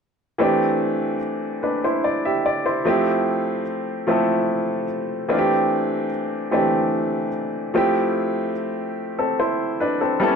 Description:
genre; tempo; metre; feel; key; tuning
R&B; 49 BPM (dotted quarters); 6/8; straight; unclear; A4 = 441 Hz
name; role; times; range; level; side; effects
clear baby grand piano; solo; 0.4-10.4 s; E3 to E5; -19 LUFS; equal; none
room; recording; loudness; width
light reverb; none; -20 LUFS; side -6 dB against mid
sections
0.4-5.3 A section; 5.3-10.4 B section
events
none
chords
0.4 C69; 2.9 Fmaj7; 5.3 C69; 7.7 Fmaj7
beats
| 0.40 1.62 | 2.85 4.07 | 5.30 6.52 | 7.75 8.97 | 10.20

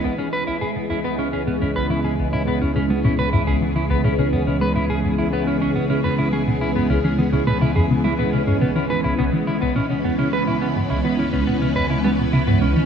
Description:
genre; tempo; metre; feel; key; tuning
ambient, sequencer-driven space music; 105 BPM; 4/4; straight; C# minor; A4 = 444 Hz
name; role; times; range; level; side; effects
phased string machine; sustained chords; 0.0-12.9 s; E3 to D#5; -22 LUFS; equal; ensemble chorus, phaser, shimmer reverb
clean electric guitar; arpeggios; 0.0-12.8 s; B3 to B4; -24 LUFS; right 1 dB; auto-pan, ping-pong delay, shimmer reverb
resonant blip pluck; riff; 0.0-12.8 s; C#2 to G#3; -23 LUFS; equal; phaser, ping-pong delay
analog drone; bass; 1.0-12.9 s; C#2; -27 LUFS; equal; chorus
room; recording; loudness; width
wet echo chamber reverb, RT60 2.3 s; echo-heavy mix; -18 LUFS; side -7 dB against mid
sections
0.0-12.9 A section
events
none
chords
0.0 C#m7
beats
| 0.04 0.62 1.19 1.76 | 2.33 2.90 3.47 4.04 | 4.62 5.19 5.76 6.33 | 6.90 7.47 8.04 8.62 | 9.19 9.76 10.33 10.90 | 11.47 12.04 12.62

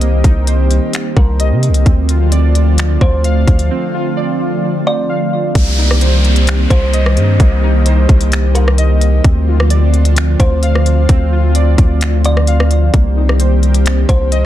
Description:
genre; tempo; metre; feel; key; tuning
hip hop, atmospheric cloud-rap; 130 BPM; 4/4; half-time; C dorian; A4 = 443 Hz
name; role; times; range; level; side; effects
airy breathy pad; sustained chords; 0.0-14.5 s; D3 to G4; -19 LUFS; equal; chorus
warbly lo-fi synth keys; arpeggios; 0.0-14.5 s; Bb3 to F5; -22 LUFS; right 2 dB; chorus, low-pass filter, tape echo
long sustained 808-style bass; bass; 0.0-14.5 s; C2 to C3; -11 LUFS; equal; none
trap drum kit; drums; 0.0-14.4 s; finger snaps, hi-hat, kick drum, rim click; -14 LUFS; equal; soft clipping on snare
kalimba; melody; 1.2-14.5 s; Bb4 to D5; -23 LUFS; right 1 dB; low-pass filter, tape echo
downlifter; sound effects; 5.6-9.2 s; none; -22 LUFS; equal; none
room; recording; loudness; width
digital ambience; dense, heavily limited modern master, faint mains hum; -10 LUFS; side -13 dB against mid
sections
0.0-5.6 A section; 5.6-14.5 B section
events
break 3.7-5.6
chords
0.0 Cm7; 1.9 Dm7; 5.6 Cm7; 9.2 Dm7; 12.9 Cm7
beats
| 0.01 0.47 0.94 1.40 | 1.86 2.32 2.78 3.24 | 3.71 4.17 4.63 5.09 | 5.55 6.01 6.47 6.94 | 7.40 7.86 8.32 8.78 | 9.24 9.71 10.17 10.63 | 11.09 11.55 12.01 12.47 | 12.94 13.40 13.86 14.32

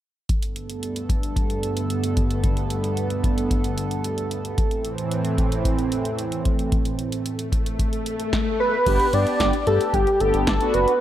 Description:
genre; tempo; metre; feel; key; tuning
synth-pop; 112 BPM; 4/4; straight; unclear; A4 = 440 Hz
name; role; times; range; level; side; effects
chorused pulse-width pad; sustained chords; 0.3-8.3 s; G2 to A4; -25 LUFS; right 1 dB; none
electro analog drum machine; drums; 0.3-11.0 s; crash cymbal, hi-hat, kick drum, snare drum; -24 LUFS; equal; none
swell; sound effects; 7.3-8.9 s; none; -29 LUFS; left 4 dB; none
octave-doubled lead; melody; 8.6-11.0 s; G4 to D5; -20 LUFS; right 1 dB; chorus
mellow synth brass; accompaniment; 8.9-10.9 s; B3 to G4; -24 LUFS; left 2 dB; chorus, phaser
round analog bass; bass; 8.9-10.9 s; F#1 to G2; -23 LUFS; equal; none
room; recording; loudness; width
light reverb; none; -20 LUFS; side -12 dB against mid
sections
0.3-8.9 A section; 8.9-11.0 B section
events
swell 7.3-8.9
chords
0.3 Gadd9; 4.6 Am; 8.9 Gadd9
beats
| 0.29 0.83 1.36 1.90 | 2.44 2.97 3.51 4.04 | 4.58 5.12 5.65 6.19 | 6.72 7.26 7.79 8.33 | 8.87 9.40 9.94 10.47

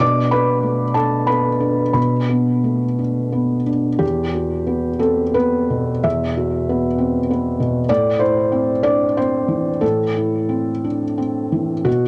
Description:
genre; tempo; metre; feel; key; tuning
neoclassical minimalist piano; 56-66 BPM (dotted quarters); 6/8; rubato; E minor; A4 = 439 Hz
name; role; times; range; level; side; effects
felt-muted upright piano; solo; 0.0-12.1 s; E2 to D6; -19 LUFS; equal; cassette tape, analog delay
room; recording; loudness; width
wet booth ambience, RT60 0.2 s; home recording on cassette, nothing above 10.6 kHz; -19 LUFS; mono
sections
0.0-4.0 A section; 4.0-12.1 A section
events
none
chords
0.0 Bm; 4.0 Emadd9; 7.9 Am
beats
| 0.01 0.97 | 1.96 2.99 | 4.02 5.01 | 6.04 6.98 | 7.89 8.84 | 9.82 10.85 | 11.87

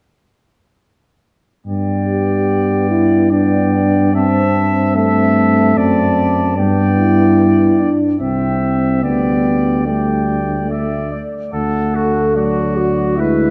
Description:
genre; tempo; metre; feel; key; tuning
classical, brass quintet; 73 BPM; 3/4; straight; G major; A4 = 440 Hz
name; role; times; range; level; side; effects
warm cornet; melody; 1.7-13.5 s; D5 to A5; -26 LUFS; equal; none
clear trumpet; second line; 1.7-13.5 s; F#4 to E5; -25 LUFS; equal; none
mellow trombone; accompaniment; 1.7-13.5 s; F#3 to C4; -24 LUFS; equal; none
mellow tuba; bass; 1.7-13.5 s; C2 to G2; -20 LUFS; equal; none
mellow French horn; accompaniment; 2.1-13.5 s; A3 to A4; -19 LUFS; equal; none
room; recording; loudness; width
wet concert hall reverb, RT60 2.4 s; dark, warm production; -15 LUFS; mono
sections
1.7-13.5 A section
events
none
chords
1.7 G; 4.1 Am7/G; 5.8 D7/F#; 6.6 G; 8.2 C; 9.0 Dsus4; 10.7 D5; 11.5 D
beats
| 1.66 2.49 3.32 | 4.14 4.96 5.77 | 6.58 7.39 8.21 | 9.04 9.87 10.71 | 11.54 12.37 13.19

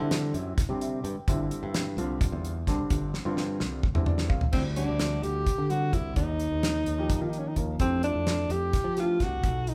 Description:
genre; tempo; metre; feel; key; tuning
electric jazz fusion; 258 BPM (eighths); 7/8; straight; unclear; A4 = 440 Hz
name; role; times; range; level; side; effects
dark grand piano; accompaniment; 0.0-9.4 s; D3 to G5; -37 LUFS; equal; none
modern bright fingered electric bass; bass; 0.0-9.7 s; G1 to F3; -34 LUFS; equal; none
damped 70s drum kit; drums; 0.1-9.7 s; crash cymbal, hi-hat, kick drum, snare drum, toms; -31 LUFS; equal; none
warm alto saxophone; melody; 4.5-9.7 s; C4 to G4; -32 LUFS; equal; none
room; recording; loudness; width
moderate large studio reverb, RT60 1.1 s; band playing live in one room; -28 LUFS; mono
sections
0.0-4.5 A section; 4.5-9.7 B section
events
grand piano fill 0.6-1.3, 3.8-4.5; drum fill 3.1-4.5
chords
0.0 D9sus4; 1.3 G7sus4; 4.5 D7sus4; 6.2 Ebadd9; 7.8 Fmaj9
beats
0.11 0.34 0.57 0.81 1.04 | 1.27 1.51 1.74 1.97 2.21 2.44 2.67 | 2.90 3.14 3.37 3.60 3.83 4.07 4.30 | 4.53 4.77 5.00 5.23 5.46 5.70 5.93 | 6.17 6.40 6.63 6.86 7.10 7.33 7.57 | 7.80 8.03 8.27 8.50 8.73 8.97 9.20 | 9.43 9.67

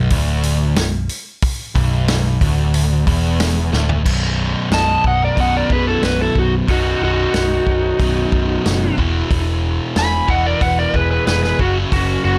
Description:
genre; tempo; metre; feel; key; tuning
blues rock power trio and southern rock; 91 BPM; 4/4; straight; B major from 4.1 s; A4 = 440 Hz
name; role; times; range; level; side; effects
sludgy distorted guitar; riff; 0.0-12.4 s; B1 to F#3; -22 LUFS; equal; overdrive
vintage muted picked electric bass; bass; 0.0-12.4 s; B0 to F#1; -22 LUFS; equal; none
vintage drum kit; drums; 0.1-12.1 s; crash cymbal, hi-hat, kick drum, snare drum, toms; -22 LUFS; equal; none
overdriven slide guitar; melody; 4.7-12.4 s; F#4 to B5; -21 LUFS; equal; plate reverb
biting lead guitar; second line; 4.7-12.4 s; C#4 to G#5; -29 LUFS; equal; overdrive, plate reverb
room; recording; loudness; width
light reverb; none; -17 LUFS; mono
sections
0.0-4.1 A section; 4.1-12.4 B section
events
drum fill 3.7-4.1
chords
0.0 B5; 4.1 B; 9.0 E5; 11.6 F#5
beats
0.11 0.77 | 1.43 2.08 2.74 3.40 | 4.05 4.71 5.37 6.03 | 6.68 7.34 7.99 8.65 | 9.30 9.96 10.61 11.27 | 11.92

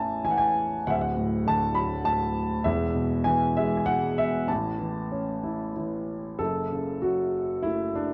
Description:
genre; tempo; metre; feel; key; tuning
classical, lyrical solo piano; 98 BPM; 3/4; rubato; A major; A4 = 440 Hz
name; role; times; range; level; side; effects
dark concert grand piano; solo; 0.0-8.1 s; D1 to B5; -27 LUFS; equal; none
room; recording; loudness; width
moderate studio reverb, RT60 0.5 s; worn, warbling old tape, cassette tape, warbly pitch drift; -27 LUFS; mono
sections
0.0-6.4 A section; 6.4-8.1 B section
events
none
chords
0.0 A; 0.9 D; 2.7 E; 4.5 A; 6.4 F#m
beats
0.25 | 0.86 1.46 2.06 | 2.66 3.27 3.88 | 4.50 5.12 5.76 | 6.40 7.03 7.65

